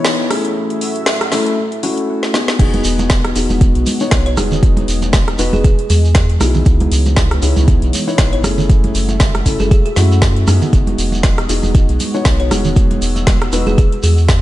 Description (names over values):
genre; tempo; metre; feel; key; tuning
deep house; 118 BPM; 4/4; swing 56% on 16ths; E major; A4 = 440 Hz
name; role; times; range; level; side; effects
dark analog pad; sustained chords; 0.0-14.4 s; E3 to E6; -26 LUFS; equal; chorus, sidechain pumping
felt-muted upright piano; stabs; 0.0-13.8 s; A3 to C#5; -20 LUFS; left 2 dB; sidechain pumping, dub echo
deep house drum kit; drums; 0.0-14.4 s; crash cymbal, hi-hat, rim click, snare drum; -20 LUFS; equal; small room ambience
round analog bass; bass; 2.6-14.4 s; E1 to F#2; -16 LUFS; equal; tube saturation
electronic kick drum; drums; 2.6-14.4 s; none; -12 LUFS; equal; small room ambience
shekere; percussion; 2.6-14.4 s; none; -27 LUFS; right 3 dB; dub echo
congas; percussion; 2.7-14.1 s; none; -23 LUFS; right 4 dB; dub echo
buzzing kalimba; melody; 4.3-14.4 s; F#4 to C#5; -26 LUFS; left 1 dB; vintage 12-bit sampler grit, dub echo
room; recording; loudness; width
light reverb, studio reverb; echo-heavy mix, nothing above 11.0 kHz; -11 LUFS; side -15 dB against mid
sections
0.0-2.6 A section; 2.6-14.4 B section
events
build-up 0.0-2.6; drum fill 2.2-2.6; drop 2.6-14.4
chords
0.3 F#m7; 2.6 Emaj9; 6.7 C#m7; 8.4 F#m7; 10.7 Emaj9